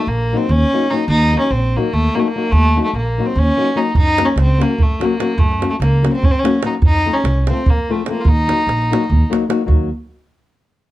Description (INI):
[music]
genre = balkan folk, Balkan wedding band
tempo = 294 BPM (eighths)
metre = 7/8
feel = straight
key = Eb dorian sharp4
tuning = A4 = 437 Hz
[part]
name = warm fiddle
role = melody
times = 0.0-9.3 s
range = A3 to F4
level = -18 LUFS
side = equal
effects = none
[part]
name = flamenco guitar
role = accompaniment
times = 0.0-9.9 s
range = F3 to Gb4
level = -20 LUFS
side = left 5 dB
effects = none
[part]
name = upright bass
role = bass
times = 0.1-9.9 s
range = Bb1 to Gb2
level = -16 LUFS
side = equal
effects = none
[part]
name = davul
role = percussion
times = 3.9-9.9 s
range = none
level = -17 LUFS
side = right 2 dB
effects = none
[sound]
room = light reverb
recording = dark, warm production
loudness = -13 LUFS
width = side -15 dB against mid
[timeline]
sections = 0.0-9.7 A section; 9.7-10.9 B section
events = none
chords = 0.0 Ebm; 4.0 Gb; 6.8 F; 8.3 Ebm